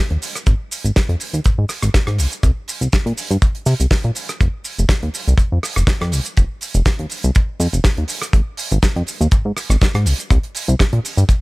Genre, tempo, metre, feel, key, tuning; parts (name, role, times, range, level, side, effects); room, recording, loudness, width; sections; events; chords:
nu-disco, nu disco; 122 BPM; 4/4; swing 54% on 16ths; F minor; A4 = 440 Hz
chorused synth bass; bass; 0.1-11.2 s; F1 to C3; -16 LUFS; equal; sidechain pumping
damped 70s drum kit; drums; 0.1-11.4 s; hi-hat, rim click, shaker, snare drum; -23 LUFS; right 1 dB
kick drum; drums; 0.5-11.4 s; -15 LUFS; equal
little or no reverb; -15 LUFS; side -23 dB against mid
0.0-11.4 A section